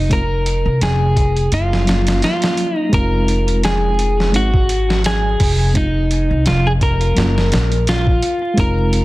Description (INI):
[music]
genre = trip hop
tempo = 85 BPM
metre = 4/4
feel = swing 56% on 16ths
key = F phrygian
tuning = A4 = 439 Hz
[part]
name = clean electric guitar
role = melody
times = 0.0-9.0 s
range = Eb4 to Bb4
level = -19 LUFS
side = equal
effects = tape echo
[part]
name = upright bass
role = bass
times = 0.0-9.0 s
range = F1 to C2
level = -17 LUFS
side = equal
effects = none
[part]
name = mellow reed electric piano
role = accompaniment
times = 0.1-9.0 s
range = Gb3 to Gb4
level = -22 LUFS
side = equal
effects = harmonic tremolo, low-pass filter, tape echo
[part]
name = boom bap sampler-style drum kit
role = drums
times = 0.1-9.0 s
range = hi-hat, kick drum, snare drum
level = -19 LUFS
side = equal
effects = none
[sound]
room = digital ambience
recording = dense, heavily limited modern master, vinyl crackle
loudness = -14 LUFS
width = side -18 dB against mid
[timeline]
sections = 0.0-9.0 A section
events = filter sweep on reed electric piano 0.0-9.0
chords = 0.1 Fm; 1.5 Gbmaj7; 2.9 Fm7; 4.3 Ab7(no3); 5.8 F5; 7.2 Gbmaj7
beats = | 0.10 0.81 1.52 2.22 | 2.93 3.63 4.34 5.05 | 5.75 6.46 7.16 7.87 | 8.57